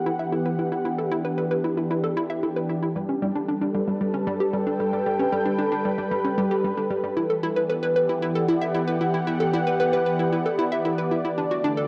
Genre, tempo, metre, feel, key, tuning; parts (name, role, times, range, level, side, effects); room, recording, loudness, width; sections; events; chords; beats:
ambient, sequencer-driven space music; 114 BPM; 4/4; straight; A4 = 441 Hz
lush unison pad; sustained chords; 0.0-11.9 s; D3 to A5; -27 LUFS; equal; chorus, shimmer reverb
hollow square pluck; riff; 0.1-11.9 s; G3 to E5; -28 LUFS; equal; chorus, tape echo, shimmer reverb
wet spring reverb, RT60 1.2 s, digital ambience; home recording on cassette; -24 LUFS; mono
0.0-11.9 A section
0.0 Em7; 3.0 Gadd9; 7.2 Em7
0.33 | 0.85 1.38 1.91 2.43 | 2.96 3.48 4.01 4.54 | 5.06 5.59 6.12 6.64 | 7.17 7.70 8.22 8.75 | 9.27 9.80 10.33 10.85 | 11.38